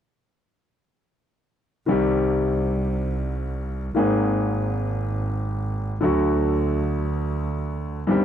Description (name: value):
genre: tango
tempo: free time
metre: none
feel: none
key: C minor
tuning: A4 = 440 Hz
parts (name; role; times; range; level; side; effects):
- clear concert grand piano; accompaniment; 1.9-8.2 s; G1 to Ab4; -23 LUFS; left 1 dB; none
- clear double bass; bass; 1.9-8.0 s; Ab1 to D2; -26 LUFS; right 2 dB; none
room: light reverb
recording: dry, close 1970s-style studio recording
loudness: -21 LUFS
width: side -9 dB against mid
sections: 1.9-8.2 A section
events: none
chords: 1.9 Cm; 4.0 Abadd9; 6.0 D